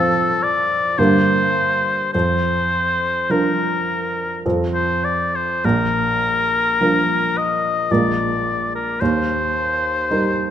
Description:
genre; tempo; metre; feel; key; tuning
classical, romantic duo for oboe and grand piano; 50-57 BPM; 3/4; rubato; Bb major; A4 = 439 Hz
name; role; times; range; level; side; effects
clear oboe; melody; 0.0-10.5 s; A4 to Eb5; -19 LUFS; left 2 dB; none
warm baby grand piano; accompaniment; 0.0-10.5 s; Bb1 to Bb4; -20 LUFS; right 2 dB; none
room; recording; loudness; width
moderate concert hall reverb, RT60 1.9 s; none; -16 LUFS; side -10 dB against mid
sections
0.0-10.5 A section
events
none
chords
0.0 F; 1.0 Gm; 2.1 Bb/F; 4.4 F; 5.6 Bb; 7.9 Bb7; 9.0 Eb

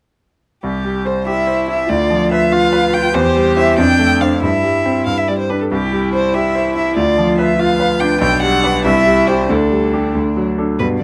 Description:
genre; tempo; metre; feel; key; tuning
quick classical-period movement for piano trio; 95 BPM (dotted quarters); 6/8; straight; C major; A4 = 440 Hz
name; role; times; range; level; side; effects
rich violin; melody; 0.6-11.0 s; G4 to G5; -19 LUFS; equal; none
bright concert grand piano; accompaniment; 0.6-11.0 s; B1 to C5; -18 LUFS; equal; none
rich cello; second line; 1.3-11.0 s; B2 to G4; -22 LUFS; equal; none
room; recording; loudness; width
light reverb; close, detailed microphones; -15 LUFS; mono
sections
0.6-10.8 A section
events
none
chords
0.6 C; 1.9 Bdim/D; 3.1 C/E; 3.8 Dm7/F; 4.4 C/G; 5.1 G; 5.7 C; 7.0 Bdim/D; 8.2 G/B; 8.8 C; 9.5 Dsus4; 10.1 D

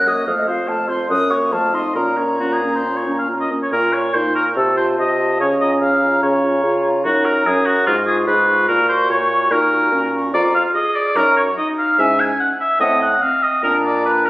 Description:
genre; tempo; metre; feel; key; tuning
quick classical-period movement for wind quintet; 145 BPM; 4/4; rubato; Bb minor; A4 = 440 Hz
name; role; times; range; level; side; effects
concert flute; melody; 0.0-14.3 s; Eb5 to Eb6; -23 LUFS; left 1 dB; none
warm oboe; second line; 0.0-14.3 s; F4 to G#5; -17 LUFS; equal; none
clear clarinet; accompaniment; 0.0-14.3 s; C4 to Bb4; -24 LUFS; right 1 dB; none
mellow French horn; accompaniment; 0.0-14.3 s; A3 to Gb4; -30 LUFS; left 1 dB; none
mellow bassoon; bass; 0.0-14.3 s; F2 to Db3; -21 LUFS; equal; none
room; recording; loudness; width
moderate concert hall reverb, RT60 1.8 s; recorded on a phone in the room, studio reverb; -14 LUFS; side -18 dB against mid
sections
0.0-3.7 A section; 3.7-14.3 B section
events
none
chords
0.3 F; 1.1 Gb; 1.5 F7; 2.0 Bbm; 4.6 F7/C; 5.4 Bbm/Db; 7.1 Gb; 7.9 Db7/Ab; 8.7 Gb/Bb; 10.3 Bb5/F; 11.2 Ebm/Gb; 12.0 E/G#; 12.8 Adim7; 13.6 Bb

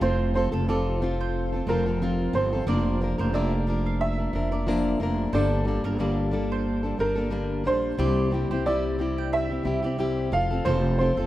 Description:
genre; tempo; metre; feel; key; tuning
acoustic pop; 90 BPM; 4/4; swing 55% on 16ths; C mixolydian; A4 = 440 Hz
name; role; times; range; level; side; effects
clear upright piano; melody; 0.0-11.3 s; A4 to F5; -29 LUFS; right 2 dB; none
fingerpicked plugged-in steel-string acoustic guitar; accompaniment; 0.0-11.3 s; G2 to Bb4; -27 LUFS; left 2 dB; none
ethereal airy pad; sustained chords; 0.0-11.3 s; C3 to A5; -36 LUFS; right 1 dB; none
mandolin; arpeggios; 0.0-11.3 s; A4 to G5; -39 LUFS; right 6 dB; ping-pong delay
upright bass; bass; 0.0-11.3 s; F1 to C2; -27 LUFS; equal; none
room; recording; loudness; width
light reverb, studio ambience; rough home demo mix; -23 LUFS; side -15 dB against mid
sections
0.0-11.3 A section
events
none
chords
0.0 F; 2.7 Bb/F; 5.3 Gmadd9; 8.0 C; 10.3 F

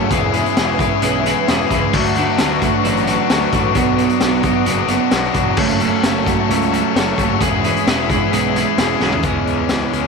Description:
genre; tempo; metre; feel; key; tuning
indie rock; 131 BPM; 4/4; straight; unclear; A4 = 443 Hz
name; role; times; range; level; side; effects
ensemble organ-string; sustained chords; 0.0-9.2 s; G#4 to D6; -26 LUFS; left 2 dB; phaser, ensemble chorus
biting overdriven guitar; riff; 0.0-10.1 s; E3 to A4; -19 LUFS; left 15 dB; none
clean electric guitar; riff; 0.0-10.1 s; B2 to B4; -20 LUFS; right 14 dB; lush chorus, tape echo
fuzz picked electric bass; bass; 0.0-10.1 s; E1 to D2; -23 LUFS; left 1 dB; overdrive
raw garage drum kit; drums; 0.1-10.0 s; crash cymbal, hi-hat, kick drum, snare drum, toms; -20 LUFS; left 1 dB; none
room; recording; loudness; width
moderate spring reverb, RT60 2.1 s; 1960s-style stereo with parts hard left and right; -14 LUFS; side -4 dB against mid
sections
0.0-9.2 A section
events
drum fill 9.0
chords
0.1 E6; 1.9 D6; 3.8 Bm; 5.6 F#m; 7.4 E6; 9.2 C#m7

